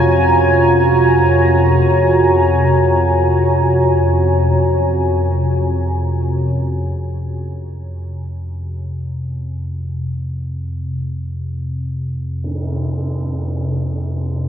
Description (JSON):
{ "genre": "dark ambient drone", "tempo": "free time", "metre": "none", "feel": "none", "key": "F phrygian", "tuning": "A4 = 441 Hz", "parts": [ { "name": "deep dark ambient pad", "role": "sustained chords", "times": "0.0-7.0 s", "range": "F4 to Bb5", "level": "-14 LUFS", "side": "right 1 dB", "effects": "chorus, built-in reverb" }, { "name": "deep rumbling drone", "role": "drone", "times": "0.0-14.5 s", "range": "F2 to C3", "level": "-18 LUFS", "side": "equal", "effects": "built-in reverb, phaser" }, { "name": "tam-tam", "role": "percussion", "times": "12.4-12.6 s", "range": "none", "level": "-28 LUFS", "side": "right 2 dB", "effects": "low-pass filter on cymbals" } ], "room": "wet cathedral reverb, RT60 5.2 s", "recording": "none", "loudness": "-14 LUFS", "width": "side -8 dB against mid", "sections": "0.0-7.0 A section; 7.0-14.5 B section", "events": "fade-in on drum 7.0-14.5", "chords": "0.0 Gbadd9/F; 7.0 F5", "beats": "free time" }